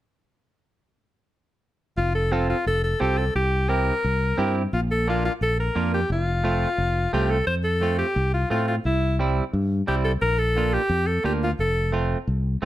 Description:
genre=latin, cumbia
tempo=175 BPM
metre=4/4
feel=straight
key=F major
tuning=A4 = 440 Hz
part: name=edgy alto saxophone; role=melody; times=2.0-11.9 s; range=E4 to C5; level=-24 LUFS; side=left 1 dB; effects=none
part: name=fingered electric bass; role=bass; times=2.0-12.7 s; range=F1 to A2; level=-24 LUFS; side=equal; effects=none
part: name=semi-hollow electric guitar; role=accompaniment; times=2.3-12.7 s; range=G3 to A4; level=-27 LUFS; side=right 4 dB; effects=none
room=light reverb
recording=none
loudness=-21 LUFS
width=side -14 dB against mid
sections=2.0-7.5 A section; 7.5-12.7 B section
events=none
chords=2.0 F; 3.3 C7; 4.7 Bb; 6.1 F; 8.8 C; 10.2 Bb; 11.6 F

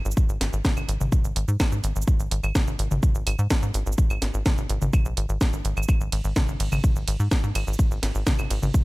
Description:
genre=melodic techno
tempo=126 BPM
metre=4/4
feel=straight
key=unclear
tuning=A4 = 437 Hz
part: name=tight sequencer bass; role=bass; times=0.0-8.7 s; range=G#1 to G#2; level=-25 LUFS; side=equal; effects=sidechain pumping
part: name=house drum kit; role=drums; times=0.1-8.8 s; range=claves, hi-hat, ride cymbal, shaker, snare drum, toms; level=-28 LUFS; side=equal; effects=none
part: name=electronic kick drum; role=drums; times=0.2-8.8 s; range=none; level=-21 LUFS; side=equal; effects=none
room=little or no reverb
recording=none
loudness=-21 LUFS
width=side -21 dB against mid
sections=0.0-8.8 A section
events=none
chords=none

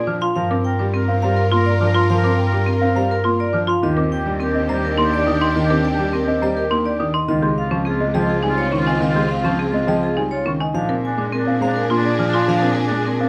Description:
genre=classical, minimalist pattern music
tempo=104 BPM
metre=3/4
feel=straight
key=Eb major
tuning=A4 = 440 Hz
part: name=vibraphone with medium hard mallets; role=melody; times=0.0-13.2 s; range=Ab4 to Ab5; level=-27 LUFS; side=equal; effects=none
part: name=warm oboe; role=second line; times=0.0-13.3 s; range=D4 to Bb4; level=-30 LUFS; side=equal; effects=none
part: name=rich symphonic string section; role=sustained chords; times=0.0-13.3 s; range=C4 to Bb4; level=-30 LUFS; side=equal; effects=none
part: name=clear cello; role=bass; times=0.0-13.3 s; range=Db2 to Bb2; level=-26 LUFS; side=equal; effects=none
part: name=warm baby grand piano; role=accompaniment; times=0.1-13.3 s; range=Eb3 to C4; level=-25 LUFS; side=equal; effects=none
part: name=buzzing marimba with hard mallets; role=arpeggios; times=0.1-13.2 s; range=C4 to C5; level=-28 LUFS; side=equal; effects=none
part: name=small celesta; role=arpeggios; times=0.1-13.3 s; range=Eb5 to F6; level=-27 LUFS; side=equal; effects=none
room=light reverb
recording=close, detailed microphones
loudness=-19 LUFS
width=mono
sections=0.0-13.3 A section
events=none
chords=0.4 Gm7; 3.8 Ebmaj7; 7.3 Dbmaj9; 10.7 Bb7

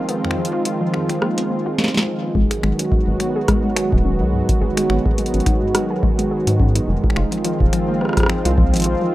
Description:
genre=IDM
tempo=106 BPM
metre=4/4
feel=swing 56% on 16ths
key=G# dorian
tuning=A4 = 440 Hz
part: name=warm analog pad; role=sustained chords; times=0.0-9.1 s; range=Eb3 to F#4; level=-20 LUFS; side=right 1 dB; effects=chorus
part: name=warbly dusty pluck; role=arpeggios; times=0.0-9.1 s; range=F2 to G#4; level=-25 LUFS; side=left 2 dB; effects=chorus, digital delay
part: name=booming analog drum machine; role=drums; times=0.1-8.9 s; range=finger snaps, hi-hat, rim click, snare drum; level=-22 LUFS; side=equal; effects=none
part: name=rubbery square bass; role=bass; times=2.4-9.0 s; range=D#1 to G#2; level=-19 LUFS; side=equal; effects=none
part: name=electronic kick drum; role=drums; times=2.4-8.7 s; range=none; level=-19 LUFS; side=equal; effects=none
room=light reverb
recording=rough home demo mix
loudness=-16 LUFS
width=side -16 dB against mid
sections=0.0-9.1 A section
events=drum fill 1.8-2.4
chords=0.0 Fm7; 2.4 G#m7; 6.9 Fm7

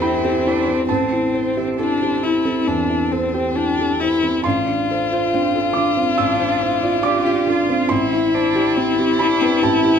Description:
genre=neoclassical piano and strings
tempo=69 BPM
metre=4/4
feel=rubato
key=A minor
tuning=A4 = 438 Hz
part: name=rich violin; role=melody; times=0.0-10.0 s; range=C4 to F4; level=-20 LUFS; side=left 4 dB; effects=plate reverb
part: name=rich cello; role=second line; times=0.0-10.0 s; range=C4 to G4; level=-26 LUFS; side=right 7 dB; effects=none
part: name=felt-muted upright piano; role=accompaniment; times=0.0-10.0 s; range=A1 to E6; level=-19 LUFS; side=right 2 dB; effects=none
part: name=Celtic harp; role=arpeggios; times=0.0-10.0 s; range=C4 to G5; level=-27 LUFS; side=left 2 dB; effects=none
room=light reverb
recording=none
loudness=-16 LUFS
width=side -7 dB against mid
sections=0.0-10.0 A section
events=none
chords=0.0 Am7; 4.4 F6/A; 7.9 Cmaj7/A

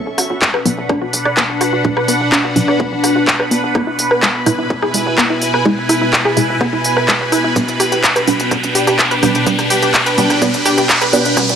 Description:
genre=melodic techno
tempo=126 BPM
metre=4/4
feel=straight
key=unclear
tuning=A4 = 438 Hz
part: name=evolving wavetable pad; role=sustained chords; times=0.0-11.6 s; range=C#4 to C#6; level=-18 LUFS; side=equal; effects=phaser, built-in reverb, sidechain pumping
part: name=filtered dub chord stab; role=stabs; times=0.0-11.6 s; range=B2 to E4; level=-20 LUFS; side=right 3 dB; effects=phaser, sidechain pumping, tape echo
part: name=analog drone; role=drone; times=0.6-11.6 s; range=B2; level=-26 LUFS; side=left 1 dB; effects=chorus, sidechain pumping
part: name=riser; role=sound effects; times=3.5-11.6 s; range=none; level=-23 LUFS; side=equal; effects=none
part: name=tight sequencer bass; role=bass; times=0.1-11.6 s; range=D1 to G2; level=-30 LUFS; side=equal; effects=none
part: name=wide unison pluck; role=arpeggios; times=0.2-11.4 s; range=G#3 to D5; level=-18 LUFS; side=equal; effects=sidechain pumping, tape echo
part: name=house drum kit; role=drums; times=0.2-11.6 s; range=handclaps, hi-hat, rim click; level=-16 LUFS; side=equal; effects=high-pass filter on hats, high-pass filter on snare
part: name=electronic kick drum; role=drums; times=0.4-11.5 s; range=none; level=-21 LUFS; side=equal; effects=high-pass filter on kick
room=moderate lush hall reverb, RT60 2.1 s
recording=dry, gritty hardware recording, cassette tape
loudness=-12 LUFS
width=side -8 dB against mid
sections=0.0-11.6 A section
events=build-up 0.0-11.6; filter sweep on synth pluck 0.0-11.6; filter sweep on synth stab 0.0-11.6; riser 3.5-11.6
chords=0.0 Bm; 3.8 E; 7.6 G

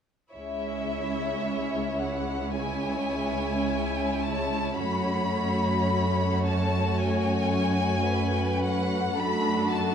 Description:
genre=classical, slow romantic movement for string orchestra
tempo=54 BPM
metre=4/4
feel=rubato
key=C# minor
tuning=A4 = 440 Hz
part: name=rich chamber violin section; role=melody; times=0.3-9.9 s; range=E5 to B5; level=-31 LUFS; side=left 3 dB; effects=none
part: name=rich chamber violin section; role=second line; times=0.3-9.9 s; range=E4 to C#5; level=-32 LUFS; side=equal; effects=none
part: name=rich chamber viola section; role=accompaniment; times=0.3-9.9 s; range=G#3 to D4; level=-30 LUFS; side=equal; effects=none
part: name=warm chamber cello section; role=bass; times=0.3-9.9 s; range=C#2 to F#2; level=-29 LUFS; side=right 1 dB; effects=none
room=moderate scoring stage reverb, RT60 1.8 s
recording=dark, warm production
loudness=-24 LUFS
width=side -8 dB against mid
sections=0.3-9.9 A section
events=none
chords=0.3 C#m; 4.8 F#m; 9.2 D/F#

